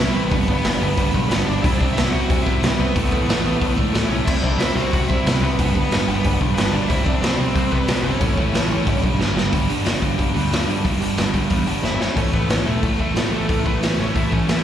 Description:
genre	punk rock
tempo	182 BPM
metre	4/4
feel	straight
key	unclear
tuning	A4 = 440 Hz
part	smooth overdriven lead guitar	melody	0.0-9.0, 11.8-14.6 s	A3 to F#5	-26 LUFS	left 1 dB	slapback echo
part	overdriven electric guitar	riff	0.0-14.6 s	G2 to C4	-24 LUFS	right 10 dB	slapback echo
part	tight distorted guitar	riff	0.0-14.6 s	G2 to C4	-26 LUFS	left 12 dB	distortion, slapback echo
part	growling picked electric bass	bass	0.0-14.6 s	E1 to G2	-24 LUFS	left 1 dB	overdrive
part	raw garage drum kit	drums	0.3-14.6 s	crash cymbal, hi-hat, kick drum, snare drum	-21 LUFS	left 1 dB	none
room	little or no reverb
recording	live gig heard through the venue's PA, recital hall reverb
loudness	-17 LUFS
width	side -10 dB against mid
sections	0.0-9.5 A section; 9.5-12.2 B section; 12.2-14.6 C section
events	drum fill 9.2-9.5, 11.8-12.2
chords	0.3 G; 1.6 C; 3.0 A; 4.3 C; 5.6 G; 6.9 C; 8.2 A; 8.9 G; 9.5 G5; 12.2 A

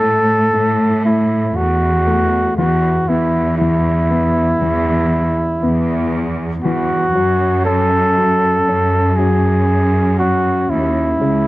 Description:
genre	pop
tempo	59 BPM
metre	4/4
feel	straight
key	unclear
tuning	A4 = 440 Hz
part	breathy flugelhorn	melody	0.0-11.5 s	E4 to A4	-16 LUFS	right 1 dB	none
part	warm upright piano	accompaniment	0.0-11.5 s	C#3 to C#4	-20 LUFS	left 3 dB	none
part	rich symphonic cello section	bass	0.0-11.5 s	C#2 to A2	-17 LUFS	right 1 dB	none
room	light reverb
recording	dry, close 1970s-style studio recording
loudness	-13 LUFS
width	side -18 dB against mid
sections	0.0-11.5 A section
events	none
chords	0.0 A5; 2.6 E5; 7.1 F#madd9

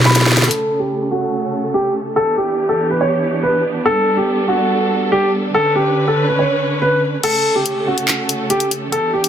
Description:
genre	hip hop, drill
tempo	142 BPM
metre	4/4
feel	half-time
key	F# phrygian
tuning	A4 = 440 Hz
part	dark concert grand piano	melody	0.0-9.3 s	F#4 to B5	-16 LUFS	equal	low-pass filter, digital delay
part	semi-hollow electric guitar	accompaniment	0.0-0.5 s	B2 to D3	-20 LUFS	left 4 dB	wide subtle chorus
part	warm studio string section	sustained chords	0.0-9.3 s	C#3 to B4	-20 LUFS	right 2 dB	low-pass filter
part	drill drum kit	drums	0.0-0.6, 7.2-9.3 s	crash cymbal, handclaps, hi-hat, snare drum	-17 LUFS	equal	none
room	light reverb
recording	dense, heavily limited modern master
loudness	-14 LUFS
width	side -9 dB against mid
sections	0.5-7.2 A section; 7.2-9.3 B section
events	drum fill 0.0-0.5; filter sweep 0.5-7.2; kick muted 7.2-9.3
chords	0.5 F#m; 2.2 Em7; 3.9 Gadd9; 5.5 Bmadd9; 7.2 F#m

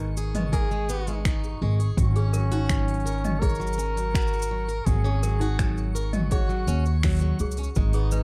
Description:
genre	folktronica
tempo	83 BPM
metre	4/4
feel	straight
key	unclear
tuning	A4 = 440 Hz
part	warm flugelhorn	melody	0.0-8.2 s	C#4 to A#4	-35 LUFS	equal	plate reverb, tape echo
part	picked plugged-in swing-style acoustic guitar	arpeggios	0.0-8.2 s	F#3 to C#5	-36 LUFS	equal	tape echo
part	upright bass	bass	0.0-8.2 s	G#1 to D#2	-27 LUFS	equal	none
part	twinkling granular texture	texture	0.0-8.2 s	C#6	-47 LUFS	equal	built-in reverb, plate reverb
part	organic electronic drum kit	drums	0.2-8.2 s	cabasa, finger snaps, hi-hat, toms	-36 LUFS	equal	overdrive
part	toy piano	second line	0.4-8.2 s	D#4 to D#5	-39 LUFS	equal	vintage 12-bit sampler grit, tape echo
part	electronic kick drum	drums	0.5-7.9 s	none	-28 LUFS	equal	overdrive
room	little or no reverb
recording	dark, warm production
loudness	-25 LUFS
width	mono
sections	0.0-8.2 A section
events	none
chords	0.0 G#5; 2.0 F#/G#

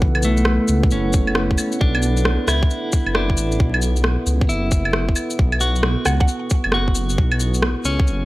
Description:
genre	future garage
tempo	134 BPM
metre	4/4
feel	swing 64% on 16ths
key	B minor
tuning	A4 = 440 Hz
part	clean electric guitar	accompaniment	0.0-8.2 s	C#3 to F#4	-25 LUFS	equal	sidechain pumping, tape echo
part	dark analog pad	sustained chords	0.0-8.2 s	B3 to F#5	-25 LUFS	right 1 dB	chorus, sidechain pumping
part	dark detuned saw bass	bass	0.0-8.2 s	F#1 to C#2	-20 LUFS	equal	sidechain pumping
part	electronic kick drum	drums	0.0-8.1 s	none	-18 LUFS	equal	none
part	electronic claves, shaker and rim click	drums	0.1-8.2 s	none	-23 LUFS	equal	none
part	mallet-like synth pluck	melody	6.1-6.3 s	F#5	-28 LUFS	right 1 dB	chorus, tape echo
room	light reverb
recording	dry, gritty hardware recording, vinyl crackle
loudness	-16 LUFS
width	side -18 dB against mid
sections	0.0-8.2 A section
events	none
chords	0.0 Bm11/F#

